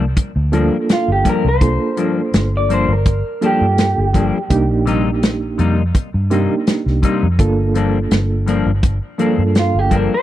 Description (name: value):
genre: straight-eighth soul blues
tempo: 83 BPM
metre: 4/4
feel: swing 53% on 16ths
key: G minor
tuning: A4 = 437 Hz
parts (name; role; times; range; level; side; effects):
- semi-hollow electric guitar; stabs; 0.0-10.1 s; G2 to Eb4; -21 LUFS; left 6 dB; analog chorus, tape echo
- vintage muted fingered electric bass; bass; 0.0-10.1 s; G1 to G2; -17 LUFS; equal; none
- warm soul drum kit; drums; 0.2-10.1 s; hi-hat, kick drum, snare drum; -16 LUFS; equal; none
- bright reed electric piano; accompaniment; 0.5-10.1 s; Bb3 to A4; -20 LUFS; right 4 dB; fast tremolo
- electric guitar through a small old amp; melody; 0.9-10.2 s; F4 to D5; -20 LUFS; right 1 dB; spring reverb
room: little or no reverb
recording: none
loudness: -14 LUFS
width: side -13 dB against mid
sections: 0.0-10.2 A section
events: none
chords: 0.0 Gm7; 4.5 Cm7; 7.4 Gm7